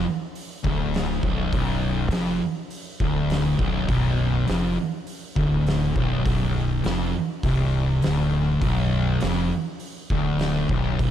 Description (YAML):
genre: stoner and doom metal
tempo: 102 BPM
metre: 4/4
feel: straight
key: B phrygian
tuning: A4 = 440 Hz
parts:
  - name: fuzz guitar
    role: riff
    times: 0.0-11.1 s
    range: B1 to E#2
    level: -25 LUFS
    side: left 7 dB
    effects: distortion
  - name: thick fuzz guitar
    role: riff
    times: 0.0-11.1 s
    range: B1 to E#2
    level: -25 LUFS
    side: right 6 dB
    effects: distortion
  - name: growling fingered electric bass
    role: bass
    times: 0.0-11.1 s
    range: B0 to E#1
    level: -28 LUFS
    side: equal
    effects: overdrive
  - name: oversized low-tuned drum kit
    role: drums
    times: 0.4-11.1 s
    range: hi-hat, kick drum, snare drum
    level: -29 LUFS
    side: equal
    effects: none
room: small room ambience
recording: dark, warm production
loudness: -21 LUFS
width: side -10 dB against mid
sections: 0.0-11.1 A section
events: none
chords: 0.0 Bm